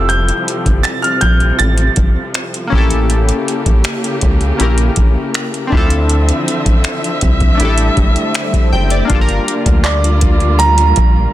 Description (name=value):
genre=contemporary R&B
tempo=80 BPM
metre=4/4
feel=straight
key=unclear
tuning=A4 = 441 Hz
part: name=clear grand piano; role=melody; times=0.0-2.7, 9.8-11.3 s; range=D5 to A6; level=-16 LUFS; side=right 4 dB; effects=ping-pong delay
part: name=warm analog keys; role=accompaniment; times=0.0-11.3 s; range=A3 to G5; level=-19 LUFS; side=left 3 dB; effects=chorus
part: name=warm studio string section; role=sustained chords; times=0.0-11.3 s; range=C3 to E5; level=-21 LUFS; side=equal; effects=none
part: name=rubbery square bass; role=bass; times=0.0-11.3 s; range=F1 to D2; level=-14 LUFS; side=equal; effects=none
part: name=booming analog drum machine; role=drums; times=0.1-11.2 s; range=finger snaps, handclaps, hi-hat, kick drum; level=-14 LUFS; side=equal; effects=soft clipping on snare
part: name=swell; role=sound effects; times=8.0-9.1 s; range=none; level=-28 LUFS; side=right 1 dB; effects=none
room=little or no reverb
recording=dense, heavily limited modern master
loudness=-11 LUFS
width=side -14 dB against mid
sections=0.0-9.1 A section; 9.1-11.3 B section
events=swell 8.0-9.1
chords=0.0 Fmaj9; 2.7 A7b9; 5.7 Dm9; 7.6 A7sus4; 9.1 Gm7